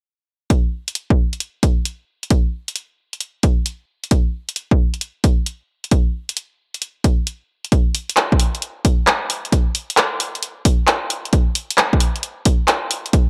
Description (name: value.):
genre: UK garage, two-step garage.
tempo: 133 BPM.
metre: 4/4.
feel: swing 67% on 16ths.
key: none.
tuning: none.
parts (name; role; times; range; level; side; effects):
electronic kick drum; drums; 0.5-13.3 s; none; -17 LUFS; equal; none.
punchy analog drum machine; drums; 0.5-13.3 s; handclaps, hi-hat; -21 LUFS; equal; none.
room: moderate spring reverb, RT60 1.4 s.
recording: none.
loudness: -19 LUFS.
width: mono.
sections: 0.5-13.3 A section.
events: none.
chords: none.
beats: | 0.50 0.95 1.41 1.86 | 2.31 2.76 3.21 3.66 | 4.11 4.56 5.01 5.46 | 5.92 6.37 6.82 7.27 | 7.72 8.17 8.62 9.07 | 9.53 9.98 10.43 10.88 | 11.33 11.78 12.23 12.68 | 13.13.